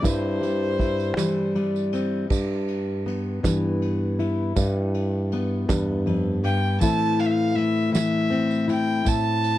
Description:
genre	acoustic folk duo or small band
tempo	53 BPM (dotted quarters)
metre	6/8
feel	straight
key	unclear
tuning	A4 = 440 Hz
part	clear violin	melody	0.0-1.5, 6.4-9.6 s	C5 to A5	-27 LUFS	right 1 dB	none
part	fingerpicked steel-string acoustic guitar	accompaniment	0.0-9.6 s	E2 to E4	-24 LUFS	left 2 dB	none
part	fingered electric bass	bass	0.0-6.8 s	G2 to G3	-25 LUFS	right 1 dB	none
part	soft brush drum kit	drums	0.0-9.6 s	crash cymbal, kick drum, ride cymbal, snare drum	-30 LUFS	right 1 dB	none
part	tambourine	percussion	0.0-9.5 s	none	-38 LUFS	right 32 dB	none
room	little or no reverb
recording	dry, close 1970s-style studio recording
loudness	-21 LUFS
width	side -14 dB against mid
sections	0.0-2.3 A section; 2.3-6.8 B section; 6.8-9.6 C section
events	none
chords	0.0 C/G; 2.3 Em; 6.8 Am

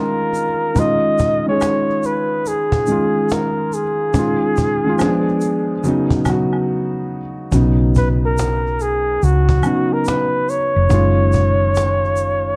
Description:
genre	lo-fi hip hop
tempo	71 BPM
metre	4/4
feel	swing 64% on 16ths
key	unclear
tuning	A4 = 440 Hz
part	breathy flugelhorn	melody	0.0-12.6 s	F#4 to D#5	-21 LUFS	equal	low-pass filter, plate reverb
part	felt-muted upright piano	accompaniment	0.0-12.6 s	C#3 to G#4	-22 LUFS	equal	low-pass filter
part	cajon	drums	0.3-12.1 s	none	-25 LUFS	equal	vintage 12-bit sampler grit
part	egg shaker and woodblock	percussion	0.3-12.4 s	none	-33 LUFS	equal	none
part	hollow-body short-scale fingered electric bass	bass	7.5-12.6 s	E#1 to C#2	-19 LUFS	equal	none
room	moderate studio reverb, RT60 0.6 s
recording	dark, warm production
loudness	-17 LUFS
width	mono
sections	0.0-7.5 A section; 7.5-12.6 B section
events	break 6.7-7.5; hi-hats muted 7.5-12.6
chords	0.0 D#9sus4; 5.0 Fdim7; 5.8 C#9sus4; 7.5 B; 10.9 F#sus2

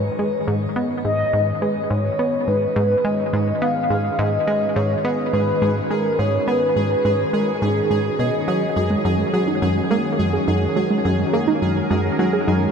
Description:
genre	ambient, sequencer-driven space music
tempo	105 BPM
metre	4/4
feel	straight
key	G# minor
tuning	A4 = 441 Hz
part	mellow horn-like synth lead	melody	0.0-8.8 s	G#4 to E#5	-22 LUFS	equal	analog chorus, shimmer reverb, tape echo
part	sweeping resonant pad	sustained chords	0.0-12.7 s	D#3 to B4	-26 LUFS	left 1 dB	chorus, shimmer reverb
part	plucky analog bass	riff	0.0-12.7 s	F#2 to B3	-21 LUFS	equal	shimmer reverb, tape echo
part	pulsing gated texture	texture	0.2-12.7 s	G#4	-28 LUFS	right 4 dB	chorus, built-in reverb, shimmer reverb
part	warbly dusty pluck	arpeggios	8.8-12.6 s	G#3 to G#4	-23 LUFS	right 4 dB	chorus, auto-pan, shimmer reverb, tape echo
room	wet huge ambient reverb, RT60 8.3 s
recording	none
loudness	-18 LUFS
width	side -6 dB against mid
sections	0.0-12.7 A section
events	fade-in on analog synth pad 0.0-12.7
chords	0.0 G#m; 8.8 F#add9

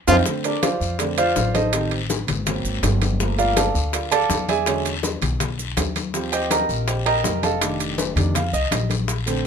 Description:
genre	Afro-Cuban jazz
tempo	163 BPM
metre	4/4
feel	straight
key	Bb major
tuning	A4 = 439 Hz
part	warm baby grand piano	accompaniment	0.1-9.5 s	D3 to Bb5	-22 LUFS	right 2 dB	none
part	upright bass	bass	0.1-9.5 s	F1 to F2	-24 LUFS	left 1 dB	none
part	bongos	percussion	0.1-9.3 s	none	-30 LUFS	left 6 dB	none
part	congas	percussion	0.1-9.4 s	none	-28 LUFS	left 5 dB	none
part	guiro	percussion	0.1-9.5 s	none	-32 LUFS	left 7 dB	none
part	maracas	percussion	0.1-9.5 s	none	-31 LUFS	right 6 dB	none
part	timbales	percussion	0.1-9.5 s	none	-27 LUFS	right 10 dB	none
room	light reverb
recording	minimal, uncompressed stereo recording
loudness	-19 LUFS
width	side -7 dB against mid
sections	0.3-9.5 A section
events	drum fill 0.0; band accent 0.0; grand piano solo 0.3-9.5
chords	0.3 Bbmaj9; 1.7 Am7b5; 2.5 Ab9; 3.2 Gm9; 4.7 E13; 6.1 Eb6; 7.6 F13

